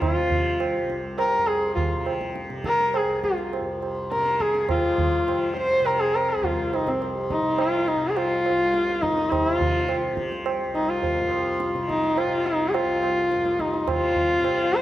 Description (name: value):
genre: indian classical, Hindustani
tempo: 104 BPM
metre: 4/4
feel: straight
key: C raga malkauns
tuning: A4 = 441 Hz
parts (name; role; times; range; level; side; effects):
- dark sarangi; melody; 0.0-14.8 s; C4 to C5; -22 LUFS; left 1 dB; none
- tanpura; drone; 0.0-14.8 s; C2 to C3; -32 LUFS; left 1 dB; none
- tabla; percussion; 0.0-14.8 s; none; -28 LUFS; right 3 dB; none
room: moderate recital hall reverb, RT60 1.6 s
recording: none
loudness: -21 LUFS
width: side -14 dB against mid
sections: 0.0-4.7 A section; 4.7-14.8 B section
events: speeding up 0.0-14.8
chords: none